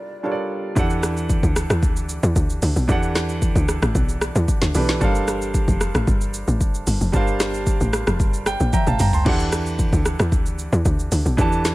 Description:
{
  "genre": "amapiano",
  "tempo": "113 BPM",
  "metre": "4/4",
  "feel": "straight",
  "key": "E minor",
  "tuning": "A4 = 440 Hz",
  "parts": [
    { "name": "mellow hollow concert flute", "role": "melody", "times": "0.0-0.5 s", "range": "D5", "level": "-40 LUFS", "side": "equal", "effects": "none" },
    { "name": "clear grand piano", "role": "accompaniment", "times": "0.0-11.7 s", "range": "E3 to C6", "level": "-25 LUFS", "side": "right 2 dB", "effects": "none" },
    { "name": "tight log drum bass", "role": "bass", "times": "0.8-11.7 s", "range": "F1 to E2", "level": "-22 LUFS", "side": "equal", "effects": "none" },
    { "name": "afro-pop drum kit", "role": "drums", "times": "0.8-11.7 s", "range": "crash cymbal, hi-hat, kick drum, rim click, shaker, snare drum, toms", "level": "-21 LUFS", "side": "equal", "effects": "overdrive" }
  ],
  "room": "little or no reverb",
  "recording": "none",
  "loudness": "-18 LUFS",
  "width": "side -18 dB against mid",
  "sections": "0.8-11.7 A section",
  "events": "break 0.0-0.8; drop 0.8-11.7; grand piano fill 8.2-9.3; drum fill 8.7-9.3",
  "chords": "0.0 Gm11; 0.8 Em11; 5.0 Gm11; 9.3 Em11",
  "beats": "0.23 | 0.77 1.30 1.83 2.36 | 2.89 3.42 3.95 4.48 | 5.01 5.54 6.08 6.61 | 7.14 7.67 8.20 8.73 | 9.26 9.79 10.32 10.85 | 11.38"
}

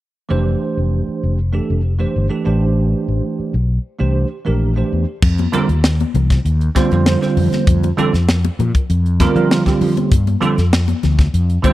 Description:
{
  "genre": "electric jazz fusion",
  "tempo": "98 BPM",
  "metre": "4/4",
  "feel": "straight",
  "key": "F major, F mixolydian from 5.2 s",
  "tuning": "A4 = 440 Hz",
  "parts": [
    { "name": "bell-like tine electric piano", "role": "accompaniment", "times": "0.3-11.7 s", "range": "D3 to C5", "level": "-18 LUFS", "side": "right 4 dB", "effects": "ensemble chorus" },
    { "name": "fretless electric bass", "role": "bass", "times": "0.3-11.6 s", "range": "F1 to F3", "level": "-16 LUFS", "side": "left 1 dB", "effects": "none" },
    { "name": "crisp fusion drum kit", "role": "drums", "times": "5.2-11.7 s", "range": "crash cymbal, hi-hat, kick drum, snare drum", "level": "-17 LUFS", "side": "left 1 dB", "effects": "none" },
    { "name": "congas", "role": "percussion", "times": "5.4-11.7 s", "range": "none", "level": "-25 LUFS", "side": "left 12 dB", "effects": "none" }
  ],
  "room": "small room ambience",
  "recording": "dry, close 1970s-style studio recording",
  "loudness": "-14 LUFS",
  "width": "side -15 dB against mid",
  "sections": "0.3-5.2 A section; 5.2-11.7 B section",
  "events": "none",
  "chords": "0.3 Fmaj7; 2.5 Am7; 4.0 C9; 5.2 Fsus4; 10.1 G9sus4",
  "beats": "| 0.31 0.92 1.54 2.16 | 2.77 3.39 4.00 4.62 | 5.23 5.84 6.46 7.07 | 7.68 8.29 8.90 9.51 | 10.12 10.73 11.34"
}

